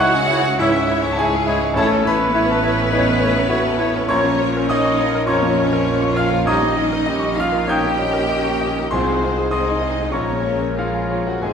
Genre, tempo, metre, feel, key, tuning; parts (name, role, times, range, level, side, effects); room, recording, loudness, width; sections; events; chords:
classical; 88-106 BPM; 4/4; rubato; A4 = 440 Hz
clear grand piano; melody; 0.0-11.5 s; A1 to G6; -20 LUFS; left 2 dB
rich studio violin section; melody; 0.0-11.5 s; Db4 to C#5; -33 LUFS; left 6 dB
mellow hollow flute section; second line; 0.0-11.5 s; F4 to G5; -27 LUFS; left 1 dB
rich studio violin section; second line; 0.0-11.5 s; F4 to G5; -27 LUFS; left 1 dB
warm clarinet; second line; 0.0-11.5 s; Eb4 to Ab4; -28 LUFS; equal
warm oboe; second line; 0.0-11.5 s; Bb4 to C#5; -29 LUFS; right 1 dB
mellow bassoon; accompaniment; 0.0-11.5 s; C4 to G4; -26 LUFS; right 2 dB
rich studio viola section; accompaniment; 0.0-11.5 s; Eb3 to E4; -28 LUFS; right 2 dB
clear studio cello section; bass; 0.0-11.5 s; F3 to G4; -26 LUFS; right 2 dB
rich chamber double bass section; bass; 0.0-11.5 s; Ab1 to C#2; -27 LUFS; right 3 dB
mellow French horn section; sustained chords; 0.6-11.5 s; Eb3 to C#4; -28 LUFS; left 1 dB
timpani; percussion; 11.4-11.5 s; Ab2; -33 LUFS; right 1 dB
wet scoring stage reverb, RT60 1.8 s; minimal, uncompressed stereo recording; -16 LUFS; side -7 dB against mid
0.0-11.5 A section
0.0 C#m; 1.8 A; 4.1 Bbm; 6.5 Eb7/Bb; 8.9 Ab/C; 10.1 Bbm7